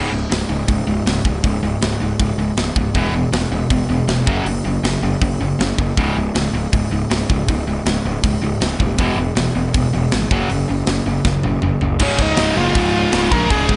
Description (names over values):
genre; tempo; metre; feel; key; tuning
punk rock; 159 BPM; 4/4; straight; unclear; A4 = 445 Hz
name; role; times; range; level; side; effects
crunchy overdriven guitar; riff; 0.0-13.8 s; Db2 to Gb3; -24 LUFS; equal; none
tight distorted guitar; riff; 0.0-13.8 s; Db2 to Gb3; -28 LUFS; equal; none
fuzz picked electric bass; bass; 0.0-13.8 s; Db1 to Bb1; -23 LUFS; equal; overdrive
tight metal drum kit; drums; 0.3-13.8 s; crash cymbal, hi-hat, kick drum, snare drum, toms; -23 LUFS; equal; none
bluesy overdriven lead guitar; melody; 12.0-13.8 s; Db4 to Bb5; -21 LUFS; equal; distortion
scooped high-gain guitar; riff; 12.0-13.8 s; Db2 to F4; -28 LUFS; equal; none
room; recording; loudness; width
little or no reverb; nothing above 10.5 kHz; -18 LUFS; mono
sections
0.0-12.0 A section; 12.0-13.8 B section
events
drum fill 11.3-12.0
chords
0.0 Db5; 3.0 E5; 4.3 Gb5; 6.0 Db5; 9.0 E5; 10.3 Gb5; 12.0 Db